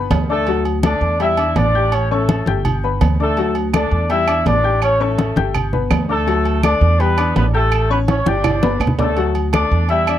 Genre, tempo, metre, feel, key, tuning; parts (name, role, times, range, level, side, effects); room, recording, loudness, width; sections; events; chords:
latin, salsa; 166 BPM; 4/4; straight; D major; A4 = 441 Hz
warm upright piano; accompaniment; 0.0-10.2 s; F#3 to G6; -22 LUFS; left 9 dB
upright bass; bass; 0.0-10.2 s; G1 to E2; -19 LUFS; right 1 dB
congas; percussion; 0.1-10.2 s; -21 LUFS; left 2 dB
timbales and agogo bells; percussion; 0.1-10.2 s; -24 LUFS; right 8 dB
clear horn section; melody; 0.3-10.2 s; A3 to E5; -19 LUFS; equal
claves; percussion; 3.7-10.2 s; -26 LUFS; right 20 dB
light reverb; dry, close 1970s-style studio recording; -14 LUFS; side -11 dB against mid
0.0-9.2 A section; 9.2-10.2 A section
drum fill 8.1-9.2
0.5 D; 1.2 Em7; 1.9 A7; 2.6 G; 3.4 D; 4.1 Em7; 4.8 A7; 5.5 G; 6.3 D; 7.0 Em7; 7.7 A7; 8.4 G; 9.2 D